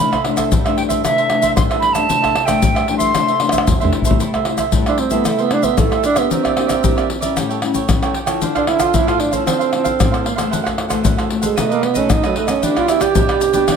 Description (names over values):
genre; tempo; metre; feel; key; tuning
samba and choro; 114 BPM; 4/4; straight; C major; A4 = 440 Hz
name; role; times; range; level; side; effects
jazz flute; melody; 0.0-3.7 s; E5 to C6; -17 LUFS; equal; none
cavaquinho; accompaniment; 0.0-13.8 s; D4 to G5; -22 LUFS; right 9 dB; none
nylon-string guitar; accompaniment; 0.0-13.8 s; F#2 to G4; -21 LUFS; left 4 dB; none
tube shaker, surdo, pandeiro and tamborim; percussion; 0.1-13.8 s; none; -18 LUFS; left 2 dB; none
breathy tenor saxophone; second line; 4.9-13.8 s; F#3 to G4; -17 LUFS; right 6 dB; none
room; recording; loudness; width
moderate large studio reverb, RT60 1.1 s; none; -14 LUFS; side -6 dB against mid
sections
0.0-4.2 A section; 4.2-13.8 B section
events
drum fill 3.4-4.2; tenor saxophone solo 4.2-13.8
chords
0.0 C69; 4.2 C6; 6.3 Em7b5; 7.4 A7; 8.4 Dm9; 10.5 F#m7b5; 11.6 B7; 12.6 Em7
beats
0.51 1.04 1.56 | 2.09 2.62 3.15 3.67 | 4.20 4.73 5.26 5.78 | 6.31 6.84 7.37 7.89 | 8.42 8.95 9.47 10.00 | 10.53 11.06 11.58 12.11 | 12.64 13.16 13.69